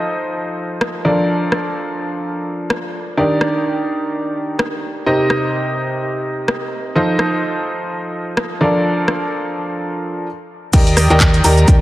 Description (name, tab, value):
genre	piano house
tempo	127 BPM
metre	4/4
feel	swing 57% on 16ths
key	unclear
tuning	A4 = 440 Hz
part	clear upright piano	riff	0.0-11.8 s	C3 to Bb5	-17 LUFS	equal	sidechain pumping, low-pass filter, dub echo
part	house drum kit	drums	0.8-11.8 s	crash cymbal, handclaps, hi-hat, rim click, shaker	-21 LUFS	equal	none
part	fingered electric bass	bass	10.7-11.8 s	Eb2	-14 LUFS	equal	sidechain pumping
part	dusty soul sampler-style drum kit	drums	10.7-11.8 s	hi-hat, shaker, snare drum	-30 LUFS	left 1 dB	none
part	electronic kick drum	drums	10.7-11.8 s	none	-12 LUFS	equal	none
room	light reverb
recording	none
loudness	-15 LUFS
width	side -16 dB against mid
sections	0.0-10.7 A section; 10.7-11.8 B section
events	stop 10.3-10.7; drop 10.7-11.8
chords	0.0 F7; 1.0 Bbmaj7/F; 3.2 Ebmaj7; 5.1 Cm7; 7.0 F7; 8.6 Bbmaj7/F; 10.7 Ebmaj7